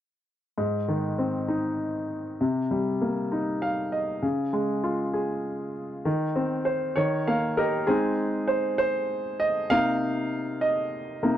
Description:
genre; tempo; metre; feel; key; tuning
pop; 66 BPM (dotted quarters); 6/8; straight; Ab major; A4 = 440 Hz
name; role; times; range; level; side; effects
bright concert grand piano; accompaniment; 0.6-11.4 s; Ab2 to F5; -24 LUFS; equal; none
room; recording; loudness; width
little or no reverb; dry, close 1970s-style studio recording; -24 LUFS; side -11 dB against mid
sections
0.6-7.9 A section; 7.9-11.4 B section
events
grand piano fill 3.3-4.2, 7.0-7.9; grand piano solo 7.9-11.4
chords
0.6 Ab; 2.4 Cm7; 4.2 Db; 6.1 Cm/Eb; 7.0 Eb7; 7.9 Ab; 9.7 Cm7

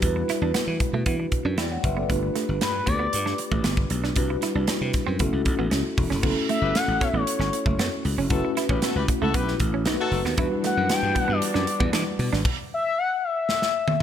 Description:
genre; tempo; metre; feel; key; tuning
polished 1980s jazz-funk pop; 116 BPM; 4/4; straight; unclear; A4 = 440 Hz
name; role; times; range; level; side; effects
mellow tine electric piano; accompaniment; 0.0-12.5 s; F#3 to G5; -28 LUFS; left 1 dB; medium stereo tremolo, lush chorus
slap bass; bass; 0.0-12.4 s; E1 to E3; -27 LUFS; equal; none
modern studio drum kit; drums; 0.0-14.0 s; crash cymbal, hi-hat, kick drum, snare drum, toms; -27 LUFS; equal; none
semi-hollow electric guitar; riff; 0.2-12.4 s; A3 to E4; -31 LUFS; right 8 dB; analog chorus
expressive synth lead; melody; 2.6-3.4, 6.5-14.0 s; B4 to G5; -26 LUFS; left 4 dB; chorus
warm horn section; second line; 6.6-10.2 s; D#4 to C#5; -30 LUFS; left 5 dB; none
warm studio string section; sustained chords; 10.4-12.4 s; E3 to F#4; -36 LUFS; right 1 dB; none
room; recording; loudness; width
light reverb, small room ambience; none; -22 LUFS; side -9 dB against mid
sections
0.0-6.2 A section; 6.2-14.0 B section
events
drum fill 13.5-14.0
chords
0.0 Em7; 2.1 G9; 4.2 Cmaj9#11; 5.2 F#m7; 9.9 B7b9; 10.4 Em9; 12.5 N.C.

